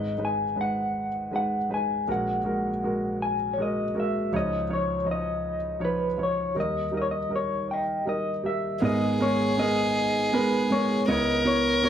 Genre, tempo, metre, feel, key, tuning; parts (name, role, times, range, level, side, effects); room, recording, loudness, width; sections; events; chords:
acoustic folk-pop ballad; 53 BPM (dotted quarters); 6/8; straight; G# minor; A4 = 441 Hz
electric guitar through a small old amp; melody; 0.0-11.9 s; B4 to G#5; -28 LUFS; left 2 dB; tremolo
clear grand piano; accompaniment; 0.0-11.9 s; G#1 to D#5; -27 LUFS; right 1 dB
rich violin; second line; 8.8-11.9 s; G#4 to A#4; -26 LUFS; equal
moderate small room reverb, RT60 0.5 s; close, detailed microphones; -24 LUFS; side -9 dB against mid
0.0-8.8 A section; 8.8-11.9 A section
0.0 G#m; 2.1 F#add9/A#; 4.3 C#add9; 6.6 D#; 8.8 G#madd9; 11.1 C#m7